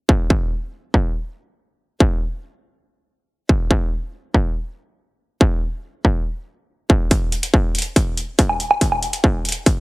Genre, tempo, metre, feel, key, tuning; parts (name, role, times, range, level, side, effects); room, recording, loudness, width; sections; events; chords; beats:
dubstep; 141 BPM; 4/4; half-time
electronic kick drum; drums; 0.1-9.7 s; -16 LUFS; equal; distortion
electronic hi-hat and woodblock; drums; 7.1-9.7 s; -20 LUFS; equal; low-pass filter on hats, low-pass filter on perc, low-pass filter on room
little or no reverb; heavily compressed radio sound, multiband compression; -17 LUFS; side -23 dB against mid
0.0-7.1 A section; 7.1-9.8 B section
build-up 7.1-9.8
| 0.30 0.73 1.15 1.58 | 2.00 2.43 2.85 3.28 | 3.71 4.13 4.56 4.98 | 5.41 5.83 6.26 6.68 | 7.11 7.54 7.96 8.39 | 8.81 9.24 9.66